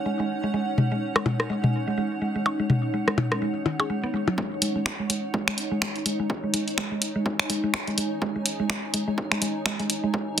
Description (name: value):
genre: minimal techno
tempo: 125 BPM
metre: 4/4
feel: swing 58% on 16ths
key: unclear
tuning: A4 = 440 Hz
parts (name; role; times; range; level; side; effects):
- granular cloud pad; texture; 0.0-10.4 s; D#4 to G#5; -31 LUFS; equal; built-in reverb, sidechain pumping
- swarming drone; texture; 0.0-10.4 s; C#4 to D#4; -38 LUFS; equal; built-in reverb, sidechain pumping
- mallet-like synth pluck; riff; 0.1-10.4 s; D#3 to G#4; -28 LUFS; right 1 dB; chorus, vintage 12-bit sampler grit, sidechain pumping, tape echo
- minimal click drum kit; percussion; 0.8-4.4 s; percussion blips, rim click, toms; -24 LUFS; left 2 dB; overdrive
- electronic kick drum; drums; 4.4-10.2 s; none; -32 LUFS; equal; high-pass filter on kick, high-pass filter on room
- punchy analog drum machine; drums; 4.6-10.4 s; finger snaps, hi-hat; -26 LUFS; equal; soft clipping on snare
room: moderate studio reverb, RT60 0.6 s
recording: dense, heavily limited modern master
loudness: -23 LUFS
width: side -9 dB against mid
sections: 0.0-4.4 A section; 4.4-10.4 B section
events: filter sweep on synth arpeggio sound 0.0-4.4; build-up 4.4-10.4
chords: 0.0 G#sus4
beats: 0.06 | 0.54 1.02 1.50 1.98 | 2.46 2.94 3.42 3.90 | 4.38 4.86 5.34 5.82 | 6.30 6.78 7.26 7.74 | 8.22 8.70 9.18 9.66 | 10.14